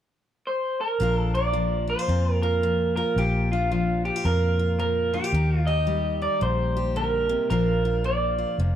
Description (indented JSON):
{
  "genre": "country",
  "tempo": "111 BPM",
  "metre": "4/4",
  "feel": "swing 62% on 8ths",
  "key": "Bb major",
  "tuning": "A4 = 440 Hz",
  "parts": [
    { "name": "electric guitar through a small old amp", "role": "melody", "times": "0.5-8.6 s", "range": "F4 to Eb5", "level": "-25 LUFS", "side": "right 2 dB", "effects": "none" },
    { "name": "picked steel-string acoustic guitar", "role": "accompaniment", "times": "1.0-8.8 s", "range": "Bb2 to Bb4", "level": "-29 LUFS", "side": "left 4 dB", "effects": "none" },
    { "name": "vintage muted fingered electric bass", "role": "bass", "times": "1.0-8.8 s", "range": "F1 to F2", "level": "-25 LUFS", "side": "equal", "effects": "none" }
  ],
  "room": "moderate plate reverb, RT60 3.3 s",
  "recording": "dark, warm production",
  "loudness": "-22 LUFS",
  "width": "side -10 dB against mid",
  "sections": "0.0-1.0 A section; 1.0-8.8 B section",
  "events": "none",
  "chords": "0.0 N.C.; 1.0 Bb; 5.3 Eb; 7.5 Bb"
}